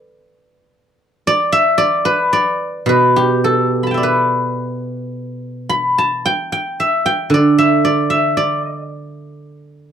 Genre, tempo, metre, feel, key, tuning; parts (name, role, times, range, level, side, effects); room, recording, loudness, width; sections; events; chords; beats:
chinese traditional, Chinese solo plucked strings; 53-58 BPM; 2/4; rubato; A4 = 441 Hz
guzheng; solo; 0.0-9.9 s; B2 to B5; -14 LUFS; equal
light reverb; dry, close 1970s-style studio recording; -13 LUFS; side -8 dB against mid
0.0-9.9 A section
| 0.74 1.78 | 2.88 4.01 | 5.14 6.25 | 7.32 8.36 | 9.42